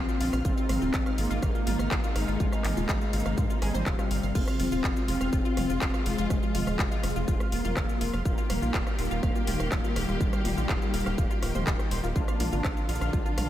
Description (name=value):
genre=melodic techno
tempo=123 BPM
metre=4/4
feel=straight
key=F dorian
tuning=A4 = 441 Hz
part: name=expressive synth lead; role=melody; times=0.0-13.5 s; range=Eb3 to D4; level=-32 LUFS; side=left 1 dB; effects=ensemble chorus, sidechain pumping, analog delay
part: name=dark symphonic string section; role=sustained chords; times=0.0-13.5 s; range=C3 to G4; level=-36 LUFS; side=equal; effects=sidechain pumping
part: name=tight sequenced synth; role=arpeggios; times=0.0-13.5 s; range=F4 to G6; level=-37 LUFS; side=left 2 dB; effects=chorus, sidechain pumping, analog delay
part: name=tight sequencer bass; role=bass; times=0.0-13.5 s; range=Eb1 to Ab2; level=-32 LUFS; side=equal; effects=sidechain pumping
part: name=techno drum kit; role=drums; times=0.1-13.5 s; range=crash cymbal, handclaps, hi-hat, rim click, shaker, toms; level=-34 LUFS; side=equal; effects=small room ambience
part: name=electronic kick drum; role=drums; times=0.4-13.2 s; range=none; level=-28 LUFS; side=equal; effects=distortion, small room ambience
room=moderate lush hall reverb, RT60 1.9 s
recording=dreamy mix soaked in reverb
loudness=-25 LUFS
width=side -12 dB against mid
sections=0.0-13.5 A section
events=none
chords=0.4 Ab; 4.4 Fm; 8.3 Eb; 12.2 Bb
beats=| 0.45 0.94 1.43 1.91 | 2.40 2.89 3.38 3.86 | 4.35 4.84 5.33 5.82 | 6.30 6.79 7.28 7.77 | 8.25 8.74 9.23 9.72 | 10.21 10.69 11.18 11.67 | 12.16 12.64 13.13